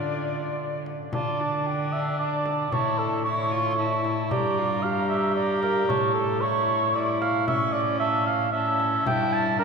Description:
classical, renaissance-style consort dance; 114 BPM; 3/4; straight; A4 = 440 Hz
mellow alto recorder; melody; 0.0-9.6 s; D5 to C#6; -32 LUFS; left 3 dB
mellow cor anglais; second line; 0.0-9.6 s; F4 to A5; -25 LUFS; right 3 dB
warm viola; accompaniment; 0.0-9.6 s; C#4 to G4; -30 LUFS; left 1 dB
dark cello; bass; 0.0-9.6 s; G2 to D3; -31 LUFS; left 1 dB
frame drum; percussion; 0.9-9.3 s; -36 LUFS; left 2 dB
wet cathedral reverb, RT60 7.0 s; recorded in a church or concert hall; -22 LUFS; side -5 dB against mid
0.0-1.1 A section; 1.1-9.6 A section
0.0 Dm; 2.7 A; 4.3 Gm; 5.9 A; 9.1 N.C.

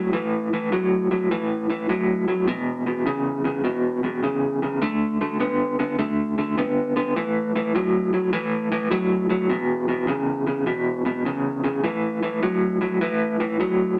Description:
blues; 102 BPM; 4/4; swing 66% on 8ths; A major; A4 = 440 Hz
electric guitar through a small old amp; solo; 0.0-13.9 s; E2 to B3; -23 LUFS; equal; tremolo
wet studio reverb, RT60 0.6 s; -23 LUFS; mono
0.0-11.8 A section; 11.8-14.0 A section
0.0 A5; 2.5 E5; 4.8 D5; 7.2 A5; 9.5 E5; 11.8 A5

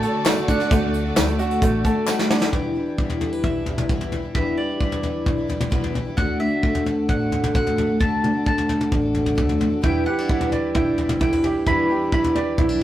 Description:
indie folk with a building arrangement; 131 BPM; 4/4; straight; E minor; A4 = 440 Hz
mandolin; melody; 0.0-12.8 s; D5 to B5; -28 LUFS; equal
picked twelve-string acoustic guitar; accompaniment; 0.0-12.8 s; E2 to F#4; -26 LUFS; left 2 dB
warm studio string section; sustained chords; 0.0-2.5 s; D3 to D5; -30 LUFS; right 1 dB
clear upright piano; arpeggios; 0.0-2.5, 9.8-12.8 s; A3 to D5; -23 LUFS; right 4 dB
soft brush drum kit; drums; 0.0-12.7 s; hi-hat, kick drum, snare drum, toms; -23 LUFS; equal
group handclap; percussion; 0.3-2.2 s; -29 LUFS; left 4 dB
tambourine; percussion; 0.3-2.2 s; -37 LUFS; right 6 dB
upright bass; bass; 0.7-12.8 s; E1 to E2; -30 LUFS; equal
fingerpicked plugged-in steel-string acoustic guitar; accompaniment; 2.5-12.8 s; A2 to B4; -25 LUFS; left 1 dB
moderate studio reverb, RT60 0.6 s; rough rehearsal-room recording; -19 LUFS; side -13 dB against mid
0.0-2.5 A section; 2.5-12.8 B section
drum fill 2.1-2.5
0.0 D; 2.5 Em7; 6.2 D; 9.8 Em7

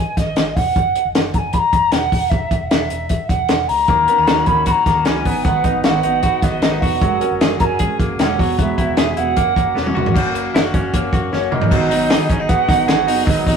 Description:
jangly indie pop; 154 BPM; 4/4; straight; G# minor; A4 = 441 Hz
alto ocarina; melody; 0.0-13.6 s; C#5 to B5; -18 LUFS; right 1 dB; tape echo
vintage muted fingered electric bass; bass; 0.0-13.6 s; E1 to F#2; -28 LUFS; left 1 dB; tube saturation
compact cocktail drum kit; drums; 0.2-13.6 s; crash cymbal, hi-hat, kick drum, snare drum, toms; -17 LUFS; equal
fingerpicked steel-string acoustic guitar; accompaniment; 3.9-13.6 s; G#2 to B4; -23 LUFS; right 4 dB
direct-recorded clean electric guitar; arpeggios; 3.9-13.6 s; F#3 to G#4; -24 LUFS; left 3 dB
clear trumpet; second line; 11.3-13.6 s; C#4 to F#4; -27 LUFS; right 3 dB
moderate stone room reverb, RT60 1.1 s; rough rehearsal-room recording; -14 LUFS; side -6 dB against mid
0.0-10.1 A section; 10.1-11.7 B section; 11.7-13.6 C section
drum fill 9.8-10.1, 11.3-11.7
0.0 G#5; 0.8 F#; 2.1 Esus2; 3.9 D#m7; 5.3 G#m7; 7.0 F#add9; 8.4 Eadd9; 9.4 F#; 11.7 G#m7

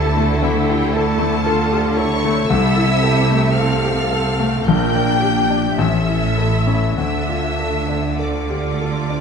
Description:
classical; 48-60 BPM; 4/4; rubato; D minor; A4 = 440 Hz
clear grand piano; melody; 0.0-9.2 s; A1 to A4; -19 LUFS; left 3 dB
clear symphonic violin section; melody; 0.0-9.2 s; E5 to G6; -27 LUFS; left 1 dB
clear symphonic violin section; second line; 0.0-9.2 s; E4 to G5; -24 LUFS; left 3 dB
clear symphonic viola section; accompaniment; 0.0-9.2 s; C4 to Bb4; -25 LUFS; equal
clear symphonic cello section; bass; 0.0-9.2 s; A2 to D3; -24 LUFS; right 4 dB
rich symphonic double bass section; bass; 0.0-9.2 s; A1 to D2; -22 LUFS; right 4 dB
wet recital hall reverb, RT60 1.6 s; dark, warm production; -15 LUFS; side -6 dB against mid
0.0-9.2 A section
0.0 Dm; 2.5 Am/C; 4.6 Gm/Bb; 5.8 A; 7.0 Dm

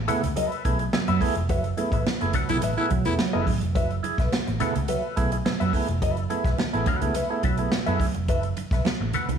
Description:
funk; 106 BPM; 4/4; straight; F# minor; A4 = 440 Hz
vintage muted fingered electric bass; bass; 0.0-9.4 s; E1 to F#2; -27 LUFS; right 1 dB
direct-recorded clean electric guitar; accompaniment; 0.1-9.3 s; A4 to F#5; -30 LUFS; left 5 dB; wah, spring reverb
percussive tonewheel organ; stabs; 0.1-8.1 s; F#3 to G#4; -28 LUFS; right 4 dB; slow rotary speaker
swinging big-band drum kit; drums; 0.1-9.4 s; hi-hat, kick drum, snare drum; -27 LUFS; equal
congas; percussion; 0.1-9.4 s; -31 LUFS; right 8 dB
raspy baritone saxophone; second line; 2.5-3.1 s; E4; -28 LUFS; left 3 dB
moderate studio reverb, RT60 0.5 s; studio reverb; -22 LUFS; side -7 dB against mid
0.0-9.4 A section
band accent 1.5-3.8
0.0 F#m11

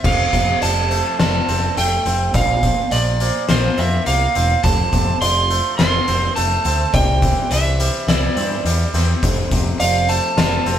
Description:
post-rock; 104 BPM; 4/4; straight; F major; A4 = 445 Hz
overdriven slide guitar; melody; 0.0-10.8 s; C5 to C6; -20 LUFS; right 4 dB
felt-muted upright piano; arpeggios; 0.0-10.8 s; A4 to F5; -30 LUFS; right 4 dB
twangy electric guitar; arpeggios; 0.0-10.8 s; F2 to F4; -26 LUFS; left 3 dB
growling picked electric bass; bass; 0.0-10.8 s; E1 to G2; -20 LUFS; equal; overdrive
oversized low-tuned drum kit; drums; 0.0-10.8 s; crash cymbal, hi-hat, kick drum, snare drum; -20 LUFS; left 1 dB
moderate studio reverb, RT60 0.6 s; band playing live in one room; -15 LUFS; side -10 dB against mid
0.0-10.8 A section
0.0 F; 2.3 Bbsus2; 4.6 F; 6.9 C; 9.2 F

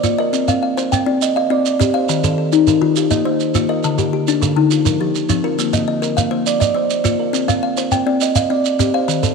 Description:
southern african traditional, mbira-style interlocking cycle; 137 BPM (dotted quarters); 12/8; straight; A4 = 441 Hz
kalimba; arpeggios; 0.0-9.3 s; D3 to G5; -17 LUFS; left 10 dB
kalimba; arpeggios; 0.0-9.3 s; D3 to Eb5; -19 LUFS; right 11 dB
shekere; percussion; 0.0-9.3 s; -20 LUFS; right 5 dB
light reverb, small room ambience; 1960s-style stereo with parts hard left and right; -14 LUFS; side -4 dB against mid
0.0-9.3 A section
0.3 Cm; 2.1 Eb5; 3.0 Bb5; 3.8 D5; 4.7 F; 5.6 Bb; 7.3 Cm

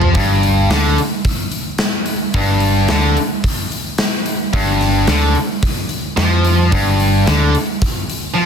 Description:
hard rock; 110 BPM; 4/4; straight; A4 = 437 Hz
tight distorted guitar; riff; 0.0-8.5 s; G2 to F3; -15 LUFS; left 1 dB; distortion
overdriven picked electric bass; bass; 0.0-7.5 s; G1 to F2; -16 LUFS; equal
big rock drum kit; drums; 0.0-8.2 s; hi-hat, kick drum, snare drum, toms; -18 LUFS; equal; soft clipping on kick
light reverb; dense, heavily limited modern master; -13 LUFS; side -7 dB against mid
0.0-8.5 A section
drum fill 0.0
0.0 G5

